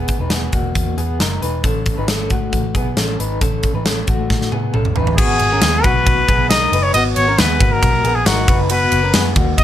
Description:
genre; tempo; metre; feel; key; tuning
jangly indie pop; 136 BPM; 4/4; straight; G# minor; A4 = 440 Hz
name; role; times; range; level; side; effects
electric guitar through a small old amp; arpeggios; 0.0-9.6 s; A3 to B4; -22 LUFS; left 2 dB; tremolo
vintage muted picked electric bass; bass; 0.0-9.6 s; E1 to A2; -21 LUFS; equal; none
big rock drum kit; drums; 0.1-9.6 s; crash cymbal, hi-hat, kick drum, ride cymbal, snare drum, toms; -17 LUFS; equal; none
breathy trumpet; melody; 5.2-9.6 s; F#4 to D#5; -16 LUFS; left 1 dB; none
room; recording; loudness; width
light reverb; none; -14 LUFS; side -11 dB against mid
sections
0.0-5.2 A section; 5.2-9.6 B section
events
drum fill 4.3-5.2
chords
0.0 Emaj7; 1.6 Aadd9; 5.2 G#m7

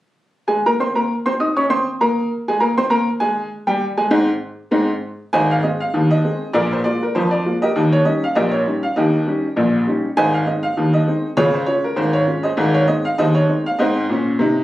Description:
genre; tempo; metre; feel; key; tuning
ragtime piano; 99 BPM; 2/4; swing 57% on 16ths; Ab major; A4 = 443 Hz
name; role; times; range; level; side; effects
clear upright piano; solo; 0.5-14.6 s; Ab1 to Eb6; -16 LUFS; equal; none
room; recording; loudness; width
light reverb; recorded on a phone in the room, club reverb, compression; -16 LUFS; side -15 dB against mid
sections
0.5-5.3 A section; 5.3-14.6 B section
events
none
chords
0.5 Ab; 6.5 Bb5; 7.8 Eb7; 10.2 Ab; 11.4 Db

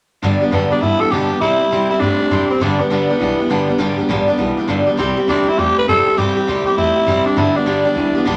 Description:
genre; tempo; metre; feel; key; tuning
rockabilly; 202 BPM; 4/4; swing 65% on 8ths; G major; A4 = 438 Hz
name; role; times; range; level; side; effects
picked steel-string acoustic guitar; accompaniment; 0.2-8.4 s; G2 to G4; -20 LUFS; equal; none
electric guitar through a small old amp; riff; 0.2-8.4 s; G2 to A3; -24 LUFS; equal; spring reverb
upright bass; bass; 0.2-8.4 s; G1 to C3; -27 LUFS; equal; none
growling tenor saxophone; melody; 0.5-8.4 s; B3 to B4; -19 LUFS; equal; none
room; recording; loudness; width
moderate large studio reverb, RT60 0.9 s; none; -16 LUFS; mono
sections
0.2-8.4 A section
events
none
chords
0.2 G; 1.4 C; 2.6 G; 5.0 C; 7.4 G

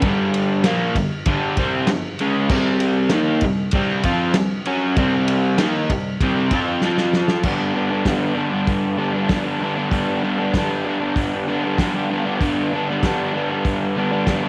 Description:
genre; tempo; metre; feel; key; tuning
garage rock duo or trio; 97 BPM; 4/4; straight; G mixolydian; A4 = 439 Hz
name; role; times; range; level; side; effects
crunchy overdriven guitar; riff; 0.0-14.5 s; G2 to F#4; -21 LUFS; equal; none
vintage drum kit; drums; 0.0-14.4 s; crash cymbal, hi-hat, kick drum, ride cymbal, snare drum; -25 LUFS; equal; none
room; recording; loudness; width
light reverb, small room ambience; none; -20 LUFS; mono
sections
0.0-7.5 A section; 7.5-14.5 B section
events
drum fill 6.8-7.5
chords
0.0 G5; 2.5 C5; 6.8 F5; 7.5 G

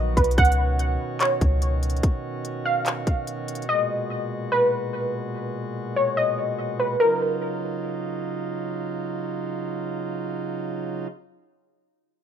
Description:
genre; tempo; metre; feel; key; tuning
hip hop, atmospheric cloud-rap; 145 BPM; 4/4; half-time; Eb minor; A4 = 437 Hz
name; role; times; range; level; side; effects
warbly dusty pluck; melody; 0.0-8.2 s; Bb4 to Gb5; -23 LUFS; equal; chorus, digital delay, plate reverb
pipe organ, cornet; sustained chords; 0.0-11.1 s; Bb2 to F#4; -30 LUFS; right 2 dB; sidechain pumping
soft 808-style bass; bass; 0.0-2.0 s; A#1 to Db2; -22 LUFS; equal; none
trap drum kit; drums; 0.2-3.7 s; handclaps, hi-hat, kick drum; -23 LUFS; equal; none
room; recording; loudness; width
moderate studio reverb, RT60 0.6 s; rough home demo mix; -22 LUFS; side -8 dB against mid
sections
0.0-7.0 A section; 7.0-10.3 B section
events
none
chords
0.4 Db9sus4; 3.7 Abm9; 7.0 Ebm9

